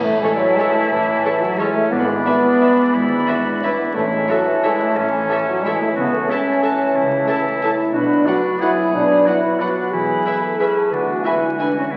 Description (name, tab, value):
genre	classical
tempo	180 BPM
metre	3/4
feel	uneven beats, rubato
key	A major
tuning	A4 = 439 Hz
part	clear oboe	second line	0.0-12.0 s	C#4 to G#4	-28 LUFS	equal	none
part	dark clarinet	second line	0.0-12.0 s	B4 to D5	-28 LUFS	equal	none
part	large flute ensemble	second line	0.0-12.0 s	G#5 to B5	-29 LUFS	equal	none
part	warm bassoon	accompaniment	0.0-12.0 s	E3 to F#3	-30 LUFS	equal	none
part	dark French horn section	sustained chords	0.0-12.0 s	E3 to A4	-21 LUFS	equal	none
part	concert harp	arpeggios	0.0-12.0 s	G#2 to B4	-30 LUFS	equal	none
part	clear chamber double bass section	bass	0.0-12.0 s	E1 to D2	-35 LUFS	equal	none
part	dark chamber cello section	bass	0.0-12.0 s	C#2 to C#3	-33 LUFS	equal	none
part	warm chamber violin section	melody	0.2-11.7 s	C#5 to A5	-32 LUFS	equal	none
part	warm chamber violin section	second line	0.2-11.7 s	A4 to E5	-36 LUFS	equal	none
part	dark chamber viola section	accompaniment	0.2-11.7 s	A4 to B4	-30 LUFS	equal	none
room	wet scoring stage reverb, RT60 1.4 s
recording	very old 78 rpm record, vinyl crackle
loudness	-18 LUFS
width	mono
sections	0.0-12.0 A section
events	none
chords	0.0 A; 1.9 E7/G#; 3.9 A; 6.0 A/C#; 7.9 Bm; 9.9 E; 10.9 E7/D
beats	0.22 0.57 | 0.90 1.24 1.59 | 1.92 2.25 2.60 | 2.93 3.27 3.62 | 3.94 4.28 4.63 | 4.96 5.29 5.64 | 5.96 6.29 6.63 | 6.94 7.27 7.61 | 7.94 8.26 8.60 | 8.93 9.25 9.59 | 9.92 10.24 10.59 | 10.91 11.24 11.59 | 11.91